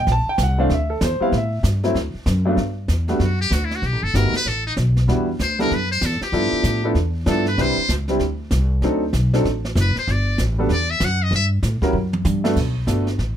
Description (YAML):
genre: jazz, small-group swing and bop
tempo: 192 BPM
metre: 4/4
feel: swing 62% on 8ths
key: G major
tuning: A4 = 441 Hz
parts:
  - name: warm grand piano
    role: accompaniment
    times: 0.0-13.1 s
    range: G2 to A5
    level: -22 LUFS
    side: equal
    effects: none
  - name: upright bass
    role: bass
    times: 0.0-13.4 s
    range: F#1 to A2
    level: -20 LUFS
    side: equal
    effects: none
  - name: jazz brush drum kit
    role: drums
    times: 0.1-13.4 s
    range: brushed snare drum, crash cymbal, hi-hat, kick drum, snare drum, toms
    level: -27 LUFS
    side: right 1 dB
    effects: none
  - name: trumpet with metal mute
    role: melody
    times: 3.2-11.5 s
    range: D#4 to F#5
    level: -22 LUFS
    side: left 2 dB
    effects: none
room: little or no reverb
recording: close, detailed microphones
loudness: -18 LUFS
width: side -10 dB against mid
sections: 0.0-2.6 A section; 2.6-12.6 A section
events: muted trumpet solo 2.6-13.4; drum fill 11.9-12.6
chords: 0.1 Bbmaj9#11; 1.3 Am7; 2.0 D; 2.6 Gmaj7(no3); 3.8 B7b13; 5.1 Em9; 6.3 G13; 7.6 Cmaj9; 8.8 D7b9; 10.1 Gmaj7sus2; 11.9 Gmaj9/F#; 12.6 Bm7